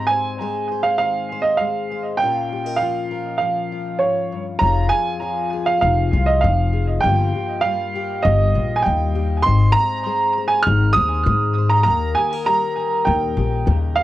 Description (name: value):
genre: indie folk with a building arrangement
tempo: 100 BPM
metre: 4/4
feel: straight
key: unclear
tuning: A4 = 440 Hz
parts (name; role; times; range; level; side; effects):
- clear upright piano; melody; 0.0-14.0 s; Db5 to F6; -19 LUFS; right 3 dB; cassette tape, tape echo
- fingerpicked steel-string acoustic guitar; accompaniment; 0.0-14.0 s; F2 to C5; -26 LUFS; left 8 dB; cassette tape
- upright bass; bass; 4.6-14.0 s; F1 to Ab2; -18 LUFS; left 2 dB; none
room: light reverb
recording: home recording on cassette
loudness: -17 LUFS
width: side -14 dB against mid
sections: 0.0-14.0 A section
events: none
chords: 0.0 Ab; 2.2 Bbm; 4.6 Fm; 7.0 Ebadd9/G; 9.4 Ab; 11.9 Eb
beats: 0.40 1.00 1.61 | 2.21 2.81 3.42 4.02 | 4.62 5.23 5.83 6.43 | 7.04 7.64 8.24 8.84 | 9.45 10.05 10.65 11.26 | 11.86 12.46 13.06 13.66